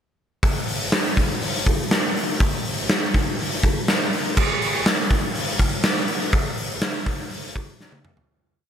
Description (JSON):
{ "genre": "rock", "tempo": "122 BPM", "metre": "4/4", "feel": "straight", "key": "none", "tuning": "none", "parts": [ { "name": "big rock drum kit", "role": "drums", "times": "0.4-8.3 s", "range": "crash cymbal, hi-hat, kick drum, snare drum, toms", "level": "-20 LUFS", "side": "equal", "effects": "none" } ], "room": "moderate lush hall reverb, RT60 2.0 s", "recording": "none", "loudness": "-19 LUFS", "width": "side -8 dB against mid", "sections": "0.4-8.3 riff", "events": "fade-out 6.3-8.3; drum fill 7.8-8.3", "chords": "none" }